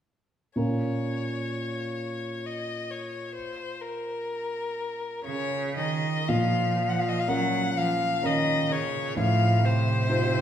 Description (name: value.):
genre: classical, slow romantic movement for piano trio.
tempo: 55-68 BPM.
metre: 3/4.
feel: rubato.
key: Bb minor.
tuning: A4 = 440 Hz.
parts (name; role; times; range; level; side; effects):
rich violin; melody; 0.6-10.4 s; Bb4 to Gb5; -29 LUFS; left 4 dB; none.
warm concert grand piano; accompaniment; 0.6-10.4 s; A2 to C5; -27 LUFS; equal; none.
clear cello; second line; 5.2-10.4 s; C3 to Gb3; -29 LUFS; right 4 dB; none.
room: wet recital hall reverb, RT60 1.8 s.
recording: recorded in a church or concert hall.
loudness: -25 LUFS.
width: side -10 dB against mid.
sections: 0.6-6.3 A section; 6.3-10.4 B section.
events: none.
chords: 0.6 Bbm; 9.2 F7/A.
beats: | 0.58 1.53 2.45 | 3.34 4.26 5.25 | 6.29 7.28 8.23 | 9.16 10.10.